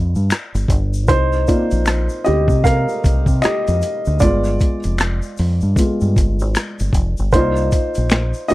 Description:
R&B, neo-soul; 77 BPM; 4/4; swing 60% on 16ths; A4 = 440 Hz
dark baby grand piano; accompaniment; 0.0-8.5 s; Ab3 to F5; -19 LUFS; equal
deep dub fingered electric bass; bass; 0.0-8.5 s; F1 to C3; -18 LUFS; equal
egg shaker and finger snaps; percussion; 0.2-8.5 s; -32 LUFS; left 3 dB
boom bap sampler-style drum kit; drums; 0.3-8.5 s; finger snaps, hi-hat, kick drum, rim click, snare drum; -17 LUFS; equal
little or no reverb; dry, close 1970s-style studio recording; -15 LUFS; side -17 dB against mid
0.0-8.5 A section
grand piano solo 0.0-8.5
0.0 G7b9; 1.1 Cm11; 4.2 G7b9; 7.3 Cm11

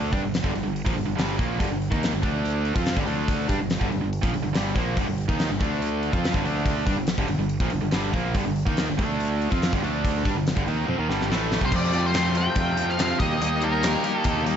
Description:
classic rock; 142 BPM; 4/4; straight; G minor; A4 = 440 Hz
distorted electric guitar; riff; 0.0-14.6 s; F2 to G4; -29 LUFS; left 11 dB; distortion
tight distorted guitar; riff; 0.0-14.6 s; F2 to G4; -28 LUFS; right 11 dB; distortion
growling fingered electric bass; bass; 0.0-14.6 s; G1 to G2; -28 LUFS; equal; overdrive
gated 80s drum kit; drums; 0.1-14.6 s; crash cymbal, hi-hat, kick drum, snare drum, toms; -27 LUFS; equal
octave-fuzz lead guitar; melody; 11.7-14.4 s; Bb4 to G5; -27 LUFS; left 2 dB; distortion
fingerpicked twelve-string acoustic guitar; accompaniment; 11.7-14.6 s; Eb3 to A4; -32 LUFS; left 4 dB
light reverb, small room ambience; nothing above 7.8 kHz; -22 LUFS; side -8 dB against mid
0.0-11.7 A section; 11.7-14.6 B section
drum fill 10.9-11.7
0.1 Gm; 2.2 D5; 2.8 G5; 3.1 D5; 3.5 Gm; 5.6 D5; 6.1 G5; 6.4 D5; 6.9 Gm; 9.0 D5; 9.5 G5; 9.8 D5; 10.2 Gm; 11.7 F; 13.2 Eb

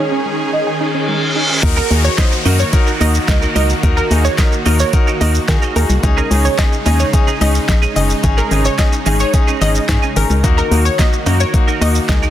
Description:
dance-pop; 109 BPM; 4/4; straight; Eb minor; A4 = 438 Hz
folk marimba with soft mallets; melody; 0.0-1.3 s; Db5 to Eb5; -23 LUFS; equal; dub echo
clear concert grand piano; accompaniment; 0.0-12.2 s; Ab3 to Db5; -22 LUFS; left 5 dB; sidechain pumping
supersaw pad; sustained chords; 0.0-12.3 s; Db3 to Ab4; -22 LUFS; equal; sidechain pumping
tight sequenced synth; arpeggios; 0.0-1.6 s; Ab3 to Ab4; -22 LUFS; right 4 dB; chorus, sidechain pumping, dub echo
reverse cymbal and downlifter; sound effects; 0.8-6.0 s; -22 LUFS; left 1 dB
twelve-string electric guitar; riff; 1.6-12.3 s; Db4 to Bb4; -23 LUFS; right 8 dB; ensemble chorus
organ-like FM bass; bass; 1.6-12.3 s; Gb1 to Eb3; -14 LUFS; equal; sidechain pumping
pop drum kit; drums; 1.6-12.3 s; crash cymbal, handclaps, hi-hat, kick drum, shaker, snare drum; -16 LUFS; equal
analog pluck; melody; 1.8-12.2 s; Bb4 to Eb5; -21 LUFS; right 1 dB; chorus, sidechain pumping, dub echo
light reverb, digital ambience; dense, heavily limited modern master; -12 LUFS; side -12 dB against mid
0.0-1.6 A section; 1.6-12.3 B section
reverse cymbal 0.8-1.6; drop 1.6-12.3
0.0 Dbsus2; 1.6 Ebm; 6.0 Dbsus2; 8.2 Absus4; 10.4 Ebm

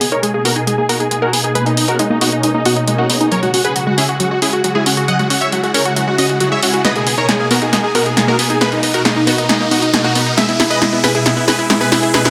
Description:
uplifting trance; 136 BPM; 4/4; straight; G# minor; A4 = 440 Hz
big supersaw lead; melody; 0.0-12.3 s; D#4 to F#5; -20 LUFS; equal; low-pass filter, dub echo
analog pluck; second line; 0.0-12.3 s; D#4 to F#5; -24 LUFS; equal; chorus, dub echo
unison pluck; arpeggios; 0.0-12.3 s; F#3 to G#4; -23 LUFS; equal; dub echo
punchy analog drum machine; drums; 0.0-12.3 s; hi-hat, snare drum; -19 LUFS; equal
riser; sound effects; 0.0-12.3 s; -28 LUFS; equal
analog string pad; sustained chords; 0.1-12.3 s; B2 to A#4; -23 LUFS; equal; ensemble chorus
moderate digital room reverb, RT60 1.1 s; -14 LUFS; mono
0.0-12.3 A section
build-up 0.0-12.3; filter sweep on supersaw synth 0.0-12.3; filter sweep on synth pluck 0.0-12.3; drum fill 6.8-12.3
0.0 G#madd9; 3.3 F#sus2; 6.8 G#madd9; 10.4 E

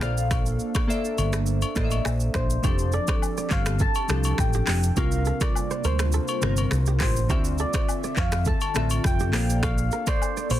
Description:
afrobeats; 103 BPM; 4/4; straight; F major; A4 = 440 Hz
soft struck synth lead; melody; 0.0-10.6 s; C5 to A5; -31 LUFS; left 1 dB; chorus, phaser, tape echo
glassy digital keys; accompaniment; 0.0-10.6 s; C3 to F5; -31 LUFS; left 1 dB; chorus
airy breathy pad; sustained chords; 0.0-10.6 s; C3 to E5; -35 LUFS; right 2 dB; chorus
fingered electric bass; bass; 0.0-10.6 s; F1 to F2; -24 LUFS; equal
afro-pop drum kit; drums; 0.0-10.6 s; finger snaps, handclaps, hi-hat, kick drum, rim click, shaker; -26 LUFS; equal; soft clipping on snare
agogo bells and woodblock; percussion; 0.3-10.6 s; -36 LUFS; left 7 dB
kora; riff; 2.6-10.6 s; G4 to D5; -35 LUFS; right 9 dB; tape echo
light reverb; dense, heavily limited modern master; -22 LUFS; side -13 dB against mid
0.0-2.6 A section; 2.6-10.6 B section
0.0 Bbmaj9#11; 2.6 F69; 5.0 C7sus4; 7.3 Dm9; 9.3 Bbmaj9

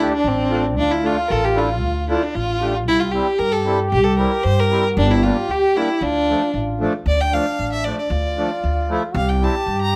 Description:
klezmer; 115 BPM; 2/4; straight; D minor; A4 = 439 Hz
warm violin; melody; 0.0-10.0 s; C4 to Bb5; -23 LUFS; equal; plate reverb
mellow trombone; second line; 0.0-10.0 s; D4 to G4; -27 LUFS; equal
accordion; accompaniment; 0.0-9.6 s; F3 to G4; -26 LUFS; equal
upright bass; bass; 0.0-10.0 s; G1 to G2; -24 LUFS; equal
moderate studio reverb, RT60 0.6 s; -19 LUFS; mono
0.0-7.1 A section; 7.1-10.0 B section
0.0 Dm; 2.9 C; 5.0 Gm; 6.0 Dm; 9.2 C

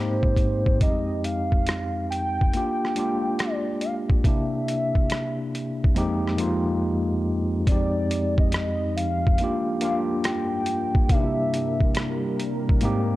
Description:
lo-fi hip hop; 70 BPM; 4/4; swing 66% on 16ths; F dorian; A4 = 440 Hz
warbly nostalgic lead; melody; 0.0-12.4 s; C5 to G5; -29 LUFS; equal; chorus, low-pass filter
tine electric piano; accompaniment; 0.0-13.2 s; F2 to G4; -25 LUFS; equal; medium stereo tremolo, cassette tape, low-pass filter
boom bap sampler-style drum kit; drums; 0.2-13.1 s; hi-hat, kick drum, rim click; -23 LUFS; equal
deep dark ambient pad; sustained chords; 8.6-13.2 s; G3 to Bb4; -34 LUFS; equal; chorus, built-in reverb, low-pass filter
light reverb, digital ambience; cassette tape; -21 LUFS; side -17 dB against mid
0.0-7.7 A section; 7.7-13.2 B section
silent gap 6.8-7.7
0.0 Abmaj9; 0.8 Fm7; 2.5 Gm7; 4.2 C7; 6.0 Fm11; 7.7 Fm7; 9.4 Gm7; 11.1 C7

